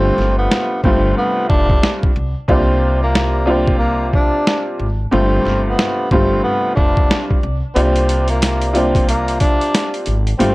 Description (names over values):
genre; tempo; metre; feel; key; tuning
hip hop, boom-bap hip-hop; 91 BPM; 4/4; swing 61% on 16ths; unclear; A4 = 440 Hz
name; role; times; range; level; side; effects
breathy tenor saxophone; melody; 0.0-10.5 s; Bb3 to D4; -19 LUFS; equal; high-pass filter, low-pass filter, analog delay
warm upright piano; accompaniment; 0.0-10.5 s; G2 to F4; -19 LUFS; equal; cassette tape, high-pass filter, low-pass filter
upright bass; bass; 0.0-10.5 s; F1 to C2; -19 LUFS; equal; transformer saturation
boom bap sampler-style drum kit; drums; 0.2-10.5 s; hi-hat, kick drum, snare drum; -17 LUFS; equal; none
room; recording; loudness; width
little or no reverb; dry, gritty hardware recording; -13 LUFS; side -21 dB against mid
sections
0.0-10.5 A section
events
break 0.0-7.8; kick muted 7.8-8.4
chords
0.0 G9sus4; 2.5 C9sus4; 5.1 G9sus4; 7.8 C9sus4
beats
0.51 1.17 1.83 | 2.49 3.15 3.80 4.46 | 5.12 5.78 6.44 7.10 | 7.76 8.42 9.08 9.74 | 10.40